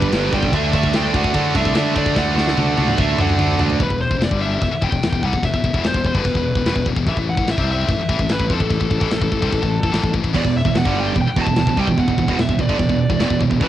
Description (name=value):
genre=heavy metal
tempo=147 BPM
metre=4/4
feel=straight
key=E minor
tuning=A4 = 439 Hz
part: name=high-gain lead guitar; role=melody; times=0.0-13.7 s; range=A4 to A5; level=-24 LUFS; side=equal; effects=distortion, cassette tape
part: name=distorted electric guitar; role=riff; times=0.0-3.8, 10.3-13.7 s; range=E2 to D4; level=-20 LUFS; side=right 7 dB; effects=overdrive, cassette tape
part: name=heavy high-gain guitar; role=riff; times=0.0-13.7 s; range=E2 to D4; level=-23 LUFS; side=left 7 dB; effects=distortion, cassette tape
part: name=fuzz fingered electric bass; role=bass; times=0.0-13.7 s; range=E1 to D3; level=-23 LUFS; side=equal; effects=overdrive
part: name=tight metal drum kit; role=drums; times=0.0-13.7 s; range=china cymbal, crash cymbal, kick drum, ride cymbal, snare drum, toms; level=-22 LUFS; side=equal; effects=cassette tape
room=little or no reverb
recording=home recording on cassette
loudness=-16 LUFS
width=side -12 dB against mid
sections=0.0-3.8 A section; 3.8-13.7 B section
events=drum fill 2.2-3.8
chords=0.0 G; 0.5 D; 3.8 Em; 7.1 A5; 10.3 Em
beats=0.13 | 0.54 0.95 1.35 1.76 | 2.17 2.58 2.99 3.40 | 3.81 4.21 4.62 5.03 | 5.44 5.85 6.26 6.67 | 7.07 7.48 7.89 8.30 | 8.71 9.12 9.53 9.94 | 10.34 10.75 11.16 11.57 | 11.98 12.39 12.79 13.20 | 13.61